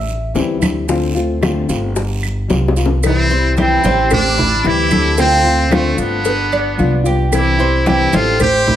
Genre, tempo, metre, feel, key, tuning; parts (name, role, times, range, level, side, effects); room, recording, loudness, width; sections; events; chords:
latin, Cuban son and guajira; 112 BPM; 4/4; straight; C major; A4 = 440 Hz
Cuban tres; arpeggios; 0.0-8.8 s; C4 to E5; -19 LUFS; right 3 dB
upright bass; bass; 0.0-8.8 s; G1 to D2; -18 LUFS; equal
congas; percussion; 0.1-8.8 s; -20 LUFS; equal
maracas; percussion; 0.1-8.8 s; -32 LUFS; right 6 dB
nylon-string guitar; accompaniment; 0.3-8.4 s; C3 to F4; -19 LUFS; left 4 dB
bongos and cowbell; percussion; 0.4-8.7 s; -23 LUFS; left 4 dB
guiro; percussion; 0.4-3.0 s; -31 LUFS; right 5 dB
claves; percussion; 0.6-8.7 s; -29 LUFS; right 5 dB
trumpet with metal mute; melody; 3.1-8.8 s; A3 to G4; -17 LUFS; equal
clear chamber violin section; second line; 3.1-8.8 s; C4 to C5; -23 LUFS; right 2 dB
light reverb; -12 LUFS; side -11 dB against mid
0.0-3.0 A section; 3.0-8.8 B section
Cuban tres solo 0.0-3.0; drum fill 2.5-3.0
0.0 Am7; 0.9 Dm7; 2.0 G7; 3.0 C; 4.1 Am7; 5.2 Dm7; 6.3 G7; 7.3 C